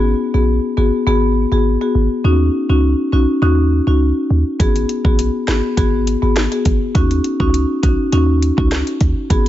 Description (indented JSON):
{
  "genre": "dancehall",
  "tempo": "102 BPM",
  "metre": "4/4",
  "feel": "straight",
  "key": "G# minor",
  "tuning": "A4 = 440 Hz",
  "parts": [
    { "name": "marimba with medium mallets", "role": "accompaniment", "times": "0.0-9.5 s", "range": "B3 to G#4", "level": "-17 LUFS", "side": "left 2 dB", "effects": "none" },
    { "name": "warm 808-style bass", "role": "bass", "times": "0.0-9.5 s", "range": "G#1 to D#2", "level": "-16 LUFS", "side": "right 1 dB", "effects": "none" },
    { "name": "afro-pop drum kit", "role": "drums", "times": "4.6-9.5 s", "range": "hi-hat, kick drum, rim click, snare drum", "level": "-17 LUFS", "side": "right 1 dB", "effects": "none" }
  ],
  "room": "digital ambience",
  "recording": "nothing above 7.7 kHz",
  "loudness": "-13 LUFS",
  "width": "side -13 dB against mid",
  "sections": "0.0-9.5 A section",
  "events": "none",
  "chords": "0.0 G#m7; 2.2 D#m7; 4.6 G#m7; 7.0 D#m7",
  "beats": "0.48 1.07 1.66 | 2.25 2.83 3.42 4.01 | 4.60 5.19 5.77 6.36 | 6.95 7.54 8.13 8.72 | 9.30"
}